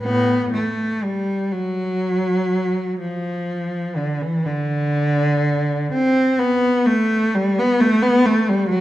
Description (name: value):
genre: classical, free, expressive piece for unaccompanied cello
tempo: 38-45 BPM (dotted quarters)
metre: 6/8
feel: rubato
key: unclear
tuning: A4 = 440 Hz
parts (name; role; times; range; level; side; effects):
- rich cello; solo; 0.0-8.8 s; A2 to C4; -17 LUFS; equal; none
room: wet recital hall reverb, RT60 1.5 s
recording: dark, warm production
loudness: -17 LUFS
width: side -15 dB against mid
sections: 0.0-8.8 A section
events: none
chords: none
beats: | 0.02 1.52 | 3.00 4.45 | 5.92 7.33 | 8.70